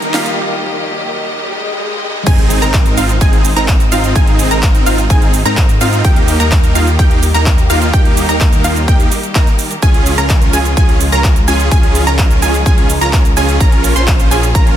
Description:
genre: EDM, festival progressive house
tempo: 127 BPM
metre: 4/4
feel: straight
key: Ab major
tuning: A4 = 440 Hz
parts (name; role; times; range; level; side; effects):
- warm grand piano; accompaniment; 0.0-2.3 s; Eb3 to G4; -24 LUFS; left 2 dB; sidechain pumping, dub echo
- bright studio string section; sustained chords; 0.0-14.8 s; C3 to Eb5; -24 LUFS; left 1 dB; sidechain pumping
- wide unison pluck; arpeggios; 0.0-14.8 s; F5 to C6; -20 LUFS; right 1 dB; sidechain pumping, dub echo
- supersaw chords; riff; 0.0-14.8 s; Bb3 to C5; -17 LUFS; right 1 dB; sidechain pumping, dub echo
- big-room dance drum kit; drums; 0.0-14.8 s; crash cymbal, handclaps, hi-hat, shaker, snare drum; -20 LUFS; right 2 dB; none
- riser, swell and impact; sound effects; 0.0-4.2 s; none; -23 LUFS; equal; none
- wide detuned saw bass; bass; 2.3-14.8 s; Ab1 to Ab2; -16 LUFS; equal; chorus, sidechain pumping
- electronic kick drum; drums; 2.3-14.6 s; none; -11 LUFS; equal; high-pass filter on kick, high-pass filter on room
room: digital ambience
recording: dense, heavily limited modern master, high-pass filter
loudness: -9 LUFS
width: side -11 dB against mid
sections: 0.0-2.3 A section; 2.3-14.8 B section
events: build-up 0.0-2.3; drum fill 0.0-0.4; riser 0.0-2.3; break 0.4-2.3; swell 1.3-2.3; drop 2.3-14.8; impact 2.3-4.2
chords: 0.0 Eb; 2.3 Ab; 6.0 Eb; 9.8 Db; 13.6 Bbm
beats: | 0.38 0.85 1.32 1.79 | 2.27 2.74 3.21 3.68 | 4.16 4.63 5.10 5.57 | 6.05 6.52 6.99 7.46 | 7.94 8.41 8.88 9.35 | 9.82 10.30 10.77 11.24 | 11.71 12.19 12.66 13.13 | 13.61 14.08 14.55

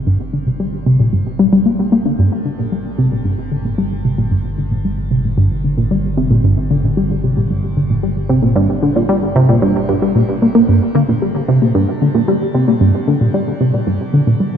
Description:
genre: ambient, sequencer-driven space music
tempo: 113 BPM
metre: 4/4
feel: straight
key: G minor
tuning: A4 = 440 Hz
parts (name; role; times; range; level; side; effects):
- tight sequenced synth; riff; 0.0-14.5 s; G2 to Bb3; -13 LUFS; equal; chorus, analog delay, shimmer reverb
- analog drone; bass; 0.0-10.7 s; G1; -23 LUFS; equal; chorus
room: wet plate reverb, RT60 3.5 s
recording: dark, warm production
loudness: -13 LUFS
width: side -8 dB against mid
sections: 0.0-10.7 A section; 10.7-14.6 B section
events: filter sweep on synth arpeggio sound 0.0-10.7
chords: 0.0 Gm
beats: | 0.07 0.60 1.13 1.66 | 2.19 2.72 3.25 3.79 | 4.32 4.85 5.38 5.91 | 6.44 6.97 7.50 8.03 | 8.56 9.10 9.63 10.16 | 10.69 11.22 11.75 12.28 | 12.81 13.34 13.87 14.40

